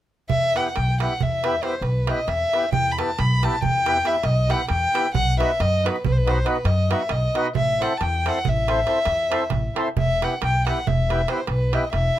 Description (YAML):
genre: balkan folk, Balkan wedding band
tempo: 273 BPM (eighths)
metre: 11/8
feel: straight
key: E harmonic minor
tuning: A4 = 442 Hz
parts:
  - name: dark violin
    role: melody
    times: 0.3-12.2 s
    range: B4 to B5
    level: -23 LUFS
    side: left 1 dB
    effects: none
  - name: upright bass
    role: bass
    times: 0.3-12.1 s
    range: E1 to F#2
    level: -23 LUFS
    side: equal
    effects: none
  - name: darbuka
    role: percussion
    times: 0.3-12.0 s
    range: none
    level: -27 LUFS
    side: right 6 dB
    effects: none
  - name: mellow accordion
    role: accompaniment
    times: 0.6-12.2 s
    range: B3 to C5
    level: -26 LUFS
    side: equal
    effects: none
room: light reverb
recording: close, detailed microphones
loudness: -19 LUFS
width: side -12 dB against mid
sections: 0.3-12.2 A section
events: none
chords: 0.3 Em; 5.1 B; 7.6 Am; 10.0 Em